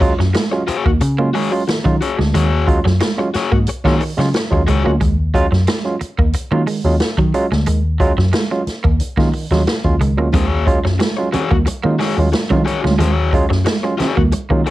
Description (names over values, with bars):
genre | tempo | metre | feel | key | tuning
funk | 90 BPM | 4/4 | straight | Eb minor | A4 = 440 Hz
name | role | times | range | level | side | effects
semi-hollow electric guitar | riff | 0.0-14.7 s | Gb3 to Bb3 | -22 LUFS | right 5 dB | analog chorus, cassette tape
barky tine electric piano | stabs | 0.0-14.7 s | Eb3 to F4 | -20 LUFS | right 2 dB | cassette tape
vintage muted picked electric bass | bass | 0.0-14.6 s | Db2 to Eb3 | -16 LUFS | equal | none
swinging big-band drum kit | drums | 0.0-14.7 s | hi-hat, kick drum, snare drum | -19 LUFS | equal | none
crunchy overdriven guitar | accompaniment | 0.2-4.9, 10.3-14.7 s | Gb4 to Db5 | -22 LUFS | left 6 dB | cassette tape
congas | percussion | 10.3-14.5 s | none | -23 LUFS | right 4 dB | none
room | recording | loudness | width
light reverb | home recording on cassette | -14 LUFS | side -16 dB against mid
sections
0.0-14.7 A section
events
none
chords
0.0 Ebm11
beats
0.34 1.01 1.68 | 2.34 3.01 3.67 4.34 | 5.01 5.67 6.34 7.00 | 7.67 8.34 9.00 9.67 | 10.33 11.00 11.67 12.33 | 13.00 13.67 14.33